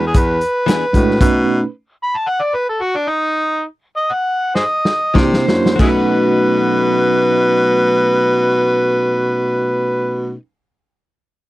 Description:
straight-eighth soul blues; 91-114 BPM; 4/4; swing 53% on 16ths; B mixolydian; A4 = 440 Hz
overdriven harmonica; melody; 0.0-10.3 s; D4 to B5; -17 LUFS; equal
bell-like tine electric piano; accompaniment; 0.0-1.6, 5.1-10.4 s; G#3 to F#4; -20 LUFS; right 3 dB; medium stereo tremolo
mellow baritone saxophone; bass; 0.0-1.6, 5.2-10.3 s; E2 to C3; -17 LUFS; equal
crunchy breakbeat drum kit; drums; 0.1-1.3, 4.6-6.0 s; crash cymbal, hi-hat, kick drum, snare drum; -16 LUFS; equal
direct-recorded clean electric guitar; stabs; 0.7-0.8, 5.1-10.4 s; E3 to G#4; -23 LUFS; left 6 dB; analog chorus
light reverb; dry, close 1970s-style studio recording; -13 LUFS; side -17 dB against mid
0.0-5.8 A section; 5.8-11.1 B section
slowing down 1.2-5.8; stop 1.2-5.1; drum fill 4.5-5.8
0.0 E7; 1.2 B7; 5.1 C9; 5.8 B7
0.15 0.67 | 1.20 1.73 2.27 2.81 | 3.37 3.94 4.53 5.15 | 5.79 6.45 7.11 7.76 | 8.42 9.08 9.74 10.40

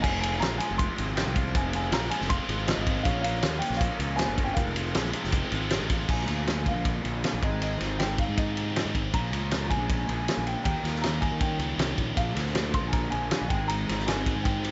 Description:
indie rock; 158 BPM; 4/4; straight; A4 = 440 Hz
dark upright piano; melody; 0.0-14.7 s; Eb5 to C6; -37 LUFS; equal; slapback echo
tine electric piano; second line; 0.0-5.9 s; Ab4 to G5; -44 LUFS; equal; medium tremolo, slapback echo
combo organ; sustained chords; 0.0-6.1 s; C4 to F5; -46 LUFS; equal
biting overdriven guitar; riff; 0.0-14.7 s; F2 to Ab4; -37 LUFS; equal; phaser
fuzz guitar; riff; 0.0-14.7 s; F2 to F4; -38 LUFS; equal; distortion, subtle chorus, slapback echo
fuzz fingered electric bass; bass; 0.0-14.7 s; F1 to Eb3; -34 LUFS; equal; overdrive
loose indie drum kit; drums; 0.0-14.7 s; crash cymbal, kick drum, ride cymbal, snare drum; -31 LUFS; equal
tube shaker; percussion; 0.0-6.1 s; -55 LUFS; equal
little or no reverb; nothing above 7.8 kHz; -28 LUFS; mono
0.0-6.1 A section; 6.1-14.7 B section
0.0 Fm; 3.1 Bbm; 4.6 Fm; 6.1 Bb7; 7.4 Abmaj7; 9.1 Bbm7; 10.7 Eb7; 12.2 Bb7; 13.5 Abmaj7
| 0.04 0.41 0.79 1.17 | 1.55 1.93 2.30 2.68 | 3.06 3.44 3.82 4.19 | 4.57 4.95 5.33 5.71 | 6.09 6.47 6.85 7.23 | 7.61 7.99 8.37 8.75 | 9.13 9.51 9.89 10.27 | 10.65 11.04 11.41 11.79 | 12.18 12.55 12.94 13.31 | 13.69 14.07 14.45

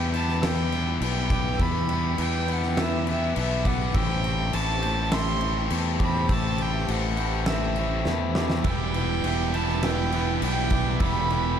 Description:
post-rock; 102 BPM; 4/4; straight; E minor; A4 = 441 Hz
warm violin; melody; 0.0-11.6 s; E5 to C6; -30 LUFS; right 2 dB; analog delay
chorused pulse-width pad; sustained chords; 0.0-11.6 s; E4 to A5; -36 LUFS; right 3 dB
overdriven electric guitar; riff; 0.0-11.6 s; A2 to E4; -30 LUFS; left 10 dB
growling fingered electric bass; bass; 0.0-11.6 s; E1 to E2; -27 LUFS; equal; overdrive
glockenspiel with hard plastic mallets; arpeggios; 0.1-11.6 s; D6 to G6; -38 LUFS; right 8 dB; analog delay
huge arena drum kit; drums; 0.1-11.4 s; crash cymbal, kick drum, snare drum; -28 LUFS; equal
sludgy distorted guitar; riff; 8.6-11.6 s; E3 to E4; -29 LUFS; right 16 dB; overdrive
studio reverb; dark, warm production; -22 LUFS; side -8 dB against mid
0.0-11.6 A section
drum fill 8.1-8.7
0.0 Em; 4.0 Am7; 8.7 Em
0.42 1.01 | 1.60 2.19 2.78 3.36 | 3.95 4.54 5.13 5.72 | 6.31 6.89 7.48 8.07 | 8.66 9.25 9.83 10.42 | 11.01

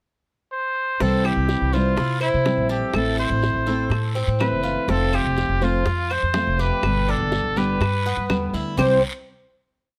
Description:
latin, Cuban son and guajira; 123 BPM; 4/4; straight; C major; A4 = 439 Hz
warm trumpet; melody; 0.5-9.0 s; E4 to C5; -27 LUFS; equal
fingerpicked steel-string acoustic guitar; accompaniment; 1.0-9.0 s; B2 to G4; -28 LUFS; equal
Cuban tres; arpeggios; 1.0-9.0 s; B3 to C5; -29 LUFS; equal
upright bass; bass; 1.0-9.0 s; F1 to C3; -26 LUFS; equal
bongos; percussion; 1.0-8.9 s; -31 LUFS; equal
guiro; percussion; 1.0-8.9 s; -39 LUFS; equal
claves; percussion; 1.2-8.9 s; -34 LUFS; equal
little or no reverb; close, detailed microphones; -22 LUFS; mono
0.0-1.0 pickup bar; 1.0-8.8 verse; 8.8-10.0 final chord
0.0 N.C.; 1.0 C; 2.9 Am; 4.9 F; 6.8 G; 8.8 C
0.03 0.52 | 1.00 1.49 1.97 2.46 | 2.94 3.43 3.91 4.40 | 4.88 5.37 5.86 6.34 | 6.83 7.32 7.81 8.30 | 8.79

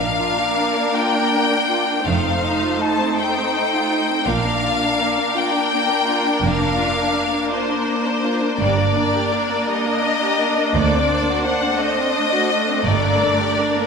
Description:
classical, slow romantic movement for string orchestra; 56 BPM (dotted quarters); 12/8; rubato; Bb major; A4 = 440 Hz
rich studio violin section; melody; 0.0-13.9 s; C5 to A5; -20 LUFS; left 4 dB
clear studio violin section; second line; 0.0-13.9 s; G3 to C5; -24 LUFS; equal
rich studio viola section; accompaniment; 0.0-13.9 s; A3 to Eb4; -22 LUFS; right 1 dB
clear studio cello section; bass; 0.0-13.7 s; D2 to Bb2; -26 LUFS; right 5 dB
rich studio double bass section; bass; 0.0-13.7 s; F1 to D2; -26 LUFS; right 4 dB
wet scoring stage reverb, RT60 1.6 s; minimal, uncompressed stereo recording; -16 LUFS; side -5 dB against mid
0.0-13.9 A section
0.0 Bb; 2.1 F7; 4.3 Bb; 8.6 Gm; 10.7 D7; 12.9 Gm
0.96 2.06 3.18 | 4.28 5.35 6.43 7.51 | 8.60 9.68 10.75 11.79 | 12.85

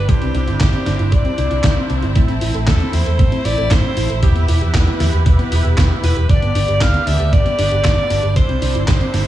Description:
italo disco; 116 BPM; 4/4; straight; A minor; A4 = 440 Hz
bright alto saxophone; melody; 0.0-9.3 s; G4 to F5; -22 LUFS; equal; tape echo
clear studio string section; sustained chords; 0.0-9.3 s; E3 to B4; -27 LUFS; equal
soft round pluck; arpeggios; 0.0-9.3 s; G3 to A4; -26 LUFS; left 3 dB; chorus, tape echo
chorused polysynth; stabs; 0.0-9.3 s; G3 to E5; -27 LUFS; right 3 dB
fingered electric bass with an envelope filter; bass; 0.0-9.3 s; E1 to E2; -17 LUFS; equal
dusty soul sampler-style drum kit; drums; 0.1-9.2 s; handclaps, hi-hat, snare drum; -23 LUFS; equal; studio ambience, gated reverb
electronic kick drum; drums; 0.1-9.0 s; -15 LUFS; equal; studio ambience
digital ambience; studio reverb; -13 LUFS; side -13 dB against mid
0.0-9.3 A section
0.1 Cadd9; 2.2 Am; 4.2 Em; 6.3 G; 8.4 Cadd9
| 0.09 0.61 1.12 1.64 | 2.16 2.67 3.19 3.71 | 4.23 4.74 5.26 5.78 | 6.30 6.81 7.33 7.85 | 8.37 8.88

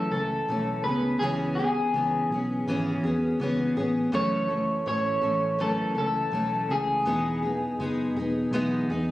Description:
indie pop, bedroom pop; 82 BPM; 4/4; straight; F# dorian; A4 = 439 Hz
electric guitar through a small old amp; melody; 0.0-8.9 s; G#4 to C#5; -28 LUFS; left 1 dB; wide subtle chorus, tape echo
fingerpicked steel-string acoustic guitar; accompaniment; 0.0-9.1 s; F#2 to A4; -27 LUFS; equal; lush chorus, vibrato effect
vintage muted picked electric bass; bass; 0.1-9.1 s; E1 to E2; -34 LUFS; equal
moderate spring reverb, RT60 1.4 s, studio ambience; recorded on a phone in the room, studio reverb; -24 LUFS; side -15 dB against mid
0.0-9.1 A section
0.0 F#m7; 0.8 C#m7; 4.1 F#m7; 7.1 Emaj7
0.48 | 1.21 1.95 2.68 3.41 | 4.14 4.87 5.60 6.34 | 7.07 7.80 8.53

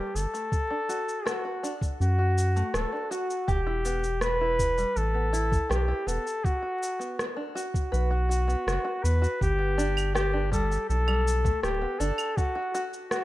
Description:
folktronica; 81 BPM; 4/4; straight; G major; A4 = 440 Hz
warm flugelhorn; melody; 0.0-13.2 s; F#4 to B4; -29 LUFS; equal; ping-pong delay
open-back banjo; arpeggios; 0.0-13.2 s; G3 to B4; -36 LUFS; right 1 dB; ping-pong delay
round analog bass; bass; 0.1-12.1 s; D1 to F#2; -26 LUFS; equal
electronic shaker, rim click and claves; drums; 0.2-13.2 s; -34 LUFS; equal
electronic kick drum; drums; 0.5-12.5 s; -28 LUFS; equal
light reverb, digital ambience; rough home demo mix, vinyl crackle; -25 LUFS; side -16 dB against mid
0.0-13.2 A section
0.0 Gsus2; 0.5 D; 3.5 Em; 6.4 B5; 9.4 Gadd9; 12.4 D (rootless)
| 0.52 1.26 2.00 2.74 | 3.48 4.22 4.96 5.71 | 6.45 7.19 7.93 8.67 | 9.41 10.15 10.89 11.63 | 12.37 13.11

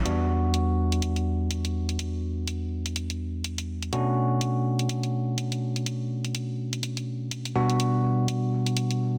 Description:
deep house; 124 BPM; 4/4; swing 58% on 16ths; E dorian; A4 = 441 Hz
bell-like tine electric piano; stabs; 0.0-9.2 s; E2 to F#4; -28 LUFS; equal; low-pass filter
electronic hi-hat; drums; 0.1-9.0 s; -35 LUFS; equal
moderate plate reverb, RT60 1.8 s; dense, heavily limited modern master; -27 LUFS; mono
0.1-9.2 A section
filter sweep on tine electric piano 0.1-9.2
0.1 Em9; 3.9 Bm9; 7.6 Gmaj7/B
| 0.06 0.54 1.02 1.51 | 1.99 2.48 2.96 3.44 | 3.93 4.41 4.89 5.38 | 5.86 6.35 6.83 7.31 | 7.80 8.28 8.77

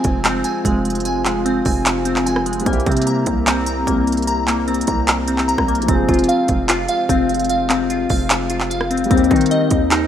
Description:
hip hop, trap; 149 BPM; 4/4; half-time; F minor; A4 = 440 Hz
dark baby grand piano; accompaniment; 0.0-10.1 s; F3 to Ab4; -28 LUFS; left 1 dB
mellow French horn section; sustained chords; 0.0-10.1 s; C3 to F4; -26 LUFS; equal
glassy digital keys; arpeggios; 0.0-10.1 s; Ab3 to Bb5; -18 LUFS; left 2 dB; chorus, tape echo
distorted 808-style bass; bass; 0.0-10.1 s; F1 to Eb3; -24 LUFS; right 1 dB; distortion
trap drum kit; drums; 0.0-10.0 s; handclaps, hi-hat, kick drum, rim click; -20 LUFS; right 1 dB
light reverb, digital ambience; rough home demo mix; -15 LUFS; side -9 dB against mid
0.0-10.1 A section
0.0 Fm; 2.7 C7; 5.9 Fm; 9.1 Eb6
0.25 0.65 | 1.05 1.46 1.86 2.26 | 2.66 3.07 3.47 3.87 | 4.27 4.68 5.08 5.48 | 5.88 6.29 6.69 7.09 | 7.50 7.90 8.30 8.70 | 9.11 9.51 9.91

